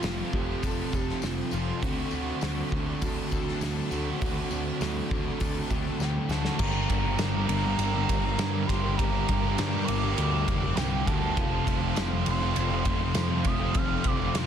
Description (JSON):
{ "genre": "rock, shoegaze and dream pop", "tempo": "101 BPM", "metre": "4/4", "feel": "straight", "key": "G minor", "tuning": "A4 = 439 Hz", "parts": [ { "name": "pure breathy sine lead", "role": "melody", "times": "0.0-14.5 s", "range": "C4 to F6", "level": "-35 LUFS", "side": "right 3 dB", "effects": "chorus, analog delay" }, { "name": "string machine, violins", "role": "sustained chords", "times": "0.0-14.5 s", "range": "A3 to D6", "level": "-42 LUFS", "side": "equal", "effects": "ensemble chorus" }, { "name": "picked twelve-string acoustic guitar", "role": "arpeggios", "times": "0.0-6.6 s", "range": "F4 to A4", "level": "-44 LUFS", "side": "left 5 dB", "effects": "wide subtle chorus, analog delay" }, { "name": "overdriven electric guitar", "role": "riff", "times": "0.0-14.5 s", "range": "F2 to G4", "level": "-33 LUFS", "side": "right 11 dB", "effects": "reverse reverb" }, { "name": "thick fuzz guitar", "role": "riff", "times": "0.0-14.5 s", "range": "F2 to D4", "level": "-32 LUFS", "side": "left 10 dB", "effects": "distortion, ensemble chorus" }, { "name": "growling picked electric bass", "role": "bass", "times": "0.0-14.5 s", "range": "F1 to G2", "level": "-31 LUFS", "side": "equal", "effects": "overdrive" }, { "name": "loose indie drum kit", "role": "drums", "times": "0.0-14.5 s", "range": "crash cymbal, hi-hat, kick drum, ride cymbal, snare drum", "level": "-30 LUFS", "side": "equal", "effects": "none" }, { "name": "tambourine", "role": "percussion", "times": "0.0-14.5 s", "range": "none", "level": "-46 LUFS", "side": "left 13 dB", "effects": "none" } ], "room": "small room ambience", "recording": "dense, heavily limited modern master", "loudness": "-25 LUFS", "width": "side -8 dB against mid", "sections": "0.0-6.6 A section; 6.6-14.5 B section", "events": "drum fill 6.0-6.6", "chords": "0.0 Fadd9; 1.8 D7; 6.6 Gm7; 11.4 Fadd9", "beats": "0.04 0.63 1.23 | 1.83 2.42 3.02 3.62 | 4.21 4.81 5.41 6.00 | 6.60 7.20 7.79 8.39 | 8.98 9.58 10.18 10.77 | 11.37 11.96 12.56 13.16 | 13.76 14.35" }